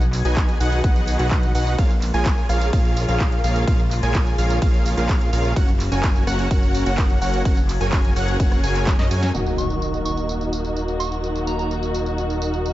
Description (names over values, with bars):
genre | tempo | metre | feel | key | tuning
EDM, festival progressive house | 127 BPM | 4/4 | straight | Eb minor | A4 = 438 Hz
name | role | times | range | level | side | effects
dark studio string section | sustained chords | 0.0-12.7 s | Db3 to Ab4 | -30 LUFS | left 3 dB | sidechain pumping
plucky unison lead | arpeggios | 0.0-9.3 s | Eb5 to Ab5 | -29 LUFS | equal | vintage 12-bit sampler grit, sidechain pumping, digital delay
supersaw chords | riff | 0.0-12.7 s | Db4 to Ab5 | -26 LUFS | right 1 dB | cassette tape, sidechain pumping, low-pass filter, digital delay
fat analog bass | bass | 0.0-12.7 s | Eb1 to Gb2 | -23 LUFS | equal | sidechain pumping
big-room dance drum kit | drums | 0.0-12.7 s | handclaps, hi-hat, ride cymbal, rim click, snare drum, tambourine | -31 LUFS | right 1 dB | none
electronic kick drum | drums | 0.4-9.0 s | none | -19 LUFS | equal | none
warm concert grand piano | accompaniment | 9.3-12.7 s | Gb3 to Gb4 | -35 LUFS | right 1 dB | none
impact | sound effects | 9.3-11.2 s | none | -30 LUFS | equal | none
soft synth bell | melody | 9.6-11.7 s | Bb5 to Db6 | -32 LUFS | right 2 dB | chorus, phaser, digital delay
room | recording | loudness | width
little or no reverb | dark, warm production, nothing above 7.7 kHz | -18 LUFS | side -15 dB against mid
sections
0.0-9.3 A section; 9.3-12.7 B section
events
drop 0.0-9.3; drum fill 8.9-9.3; band accent 9.2; impact 9.3-11.2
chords
0.0 B; 1.8 Bbm7; 5.6 Gb; 9.3 Ebm